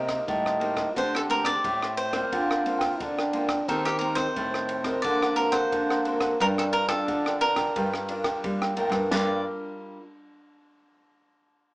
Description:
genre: samba and choro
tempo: 88 BPM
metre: 4/4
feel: straight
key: G minor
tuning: A4 = 440 Hz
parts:
  - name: cavaquinho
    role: melody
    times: 0.0-9.4 s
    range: G4 to D5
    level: -28 LUFS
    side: right 1 dB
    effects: none
  - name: warm trombone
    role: second line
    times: 0.0-9.4 s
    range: Bb3 to G4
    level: -30 LUFS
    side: right 1 dB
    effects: none
  - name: nylon-string guitar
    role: accompaniment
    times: 0.0-10.0 s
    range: A2 to Bb4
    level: -32 LUFS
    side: equal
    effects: none
  - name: nylon-string guitar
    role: bass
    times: 0.0-9.4 s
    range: G2 to G3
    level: -30 LUFS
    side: equal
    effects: none
  - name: cavaquinho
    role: accompaniment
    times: 0.1-9.4 s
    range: D4 to G5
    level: -33 LUFS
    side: right 1 dB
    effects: none
  - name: compact cocktail drum kit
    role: drums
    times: 0.1-9.3 s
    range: crash cymbal, kick drum, ride cymbal, rim click, snare drum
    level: -34 LUFS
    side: equal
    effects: none
room: moderate large studio reverb, RT60 0.8 s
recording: band playing live in one room, small speaker sound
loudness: -23 LUFS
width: side -22 dB against mid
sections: 0.0-9.1 A section; 9.1-11.7 B section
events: none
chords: 0.0 Cm7; 1.0 D7sus4; 2.3 Gm7/D; 3.7 Cm7/Eb; 5.0 D7b13; 6.4 Gm7

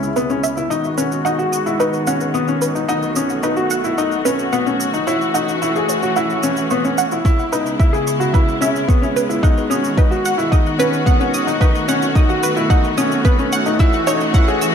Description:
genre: piano and strings electronica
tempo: 110 BPM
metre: 4/4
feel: straight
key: C# minor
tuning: A4 = 439 Hz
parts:
  - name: dark studio string section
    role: sustained chords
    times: 0.0-14.7 s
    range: C#3 to F#4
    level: -21 LUFS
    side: left 1 dB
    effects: sidechain pumping, low-pass filter
  - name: clear upright piano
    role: riff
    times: 0.0-14.7 s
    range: B3 to G#4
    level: -19 LUFS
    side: left 2 dB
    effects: ping-pong delay
  - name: warm sub bass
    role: bass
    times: 0.0-14.7 s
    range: F#1 to C#2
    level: -44 LUFS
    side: equal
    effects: none
  - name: shaker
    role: drums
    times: 0.0-14.7 s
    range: none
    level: -30 LUFS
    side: right 5 dB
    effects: high-pass filter on perc, high-pass filter on room
  - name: analog pluck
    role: arpeggios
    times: 0.2-14.7 s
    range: B4 to E6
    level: -23 LUFS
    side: right 3 dB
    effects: chorus, phaser, sidechain pumping, ping-pong delay
  - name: electronic kick drum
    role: drums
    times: 7.2-14.5 s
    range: none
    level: -14 LUFS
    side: equal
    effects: none
room: moderate echo chamber reverb, RT60 1.8 s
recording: none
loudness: -15 LUFS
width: side -7 dB against mid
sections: 0.0-14.7 A section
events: build-up 0.0-14.7; filter sweep on string section 0.0-14.7; filter sweep on synth arpeggio sound 0.0-14.7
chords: 0.0 C#m7; 0.7 G#m7; 2.9 B7; 5.1 F#m7; 7.3 C#m7; 9.4 G#m7; 11.6 B7; 13.8 F#m7

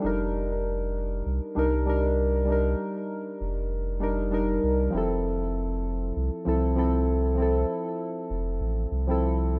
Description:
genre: sunset chillout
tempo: 98 BPM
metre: 4/4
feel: swing 57% on 16ths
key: unclear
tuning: A4 = 440 Hz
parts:
  - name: soft electric-piano-like synth keys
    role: accompaniment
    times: 0.0-9.6 s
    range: F3 to Bb4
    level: -29 LUFS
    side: equal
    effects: chorus, digital delay
  - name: warm sub bass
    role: bass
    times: 0.0-9.6 s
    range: F1 to C2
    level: -30 LUFS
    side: equal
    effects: none
room: moderate studio reverb, RT60 0.5 s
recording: rough home demo mix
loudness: -27 LUFS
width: mono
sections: 0.0-9.6 A section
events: none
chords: 0.0 Ebmaj7/F; 4.9 Fmaj7

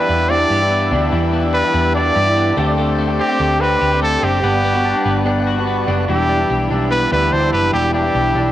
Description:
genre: indie pop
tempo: 145 BPM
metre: 4/4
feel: straight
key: unclear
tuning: A4 = 440 Hz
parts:
  - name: bright trumpet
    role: melody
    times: 0.0-8.5 s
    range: G4 to D5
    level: -18 LUFS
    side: right 1 dB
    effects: cassette tape
  - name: combo organ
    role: accompaniment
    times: 0.0-8.5 s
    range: G3 to F#5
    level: -23 LUFS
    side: left 6 dB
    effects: cassette tape
  - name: electric guitar through a small old amp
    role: accompaniment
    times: 0.0-8.5 s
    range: E2 to G4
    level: -22 LUFS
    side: right 7 dB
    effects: ensemble chorus, cassette tape
  - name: twelve-string electric guitar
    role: arpeggios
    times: 0.0-8.5 s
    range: E3 to G4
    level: -23 LUFS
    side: left 6 dB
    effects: cassette tape
  - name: hollow-body short-scale picked electric bass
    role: bass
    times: 0.1-8.5 s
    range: E1 to G2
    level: -20 LUFS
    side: equal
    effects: none
room: light reverb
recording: home recording on cassette, nothing above 11.0 kHz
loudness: -14 LUFS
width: side -13 dB against mid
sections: 0.0-6.1 A section; 6.1-8.5 B section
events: none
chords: 0.0 Em7; 2.6 D7sus4; 4.4 Gmaj7; 6.1 Em7

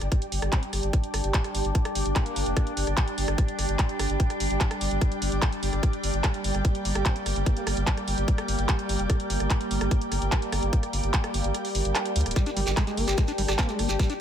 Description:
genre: psychedelic trance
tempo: 147 BPM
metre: 4/4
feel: straight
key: G minor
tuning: A4 = 440 Hz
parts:
  - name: overtone-sweeping drone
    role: sustained chords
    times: 0.0-14.2 s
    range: G3 to D4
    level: -32 LUFS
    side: equal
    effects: chorus, built-in reverb, sidechain pumping
  - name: round analog bass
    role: bass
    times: 0.0-14.0 s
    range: D1 to D2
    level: -28 LUFS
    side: equal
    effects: none
  - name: drum and bass drum kit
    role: drums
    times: 0.0-14.2 s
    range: handclaps, hi-hat, rim click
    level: -31 LUFS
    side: equal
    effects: none
  - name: ethereal airy pad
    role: texture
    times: 0.0-14.2 s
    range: G4 to G5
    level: -33 LUFS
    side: right 2 dB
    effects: ensemble chorus, built-in reverb, sidechain pumping
  - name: electronic kick drum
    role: drums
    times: 0.1-14.1 s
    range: none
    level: -24 LUFS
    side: equal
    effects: none
  - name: formant-sweep wobble bass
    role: second line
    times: 0.5-2.7, 7.1-7.6, 13.6-13.7 s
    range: Bb3 to C4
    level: -44 LUFS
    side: left 2 dB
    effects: none
  - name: overdriven acid bass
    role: riff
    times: 12.4-14.1 s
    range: G3 to G4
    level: -30 LUFS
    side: moving between left 8 dB and right 1 dB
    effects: distortion, auto-pan, sidechain pumping, ping-pong delay
  - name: shekere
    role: percussion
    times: 12.4-14.2 s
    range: none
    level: -34 LUFS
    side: right 4 dB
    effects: none
room: light reverb, digital ambience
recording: none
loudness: -23 LUFS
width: side -9 dB against mid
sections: 0.0-14.2 A section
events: kick drops out 11.5-12.4; drum fill 12.2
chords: 0.0 G5

